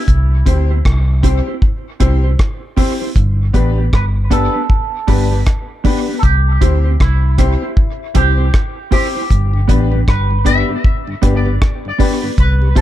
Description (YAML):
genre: roots reggae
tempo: 78 BPM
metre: 4/4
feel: swing 61% on 16ths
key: G major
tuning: A4 = 440 Hz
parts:
  - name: electric guitar with an envelope filter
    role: melody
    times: 0.0-12.8 s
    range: E4 to E5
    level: -22 LUFS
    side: right 2 dB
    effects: phaser, tape echo
  - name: vintage muted fingered electric bass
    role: bass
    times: 0.1-12.8 s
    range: G1 to D2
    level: -14 LUFS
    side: equal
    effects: none
  - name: deep reggae drum kit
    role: drums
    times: 0.1-12.8 s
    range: hi-hat, kick drum, rim click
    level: -15 LUFS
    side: equal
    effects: none
  - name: mellow electric guitar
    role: accompaniment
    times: 0.5-12.8 s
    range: B3 to C5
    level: -22 LUFS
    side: right 3 dB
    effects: analog chorus, tape echo
  - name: clear upright piano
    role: stabs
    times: 0.5-12.8 s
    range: B3 to C5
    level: -22 LUFS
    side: left 6 dB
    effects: none
  - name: mellow tonewheel organ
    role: accompaniment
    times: 9.5-12.8 s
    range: G2 to G4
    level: -27 LUFS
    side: left 2 dB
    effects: slow rotary speaker, dub echo
room: little or no reverb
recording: none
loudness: -12 LUFS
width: side -13 dB against mid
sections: 0.0-12.8 A section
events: none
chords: 0.1 C; 3.2 G; 6.2 C; 9.3 G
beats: | 0.08 0.85 1.62 2.38 | 3.15 3.92 4.69 5.46 | 6.23 7.00 7.77 8.54 | 9.30 10.07 10.84 11.61 | 12.38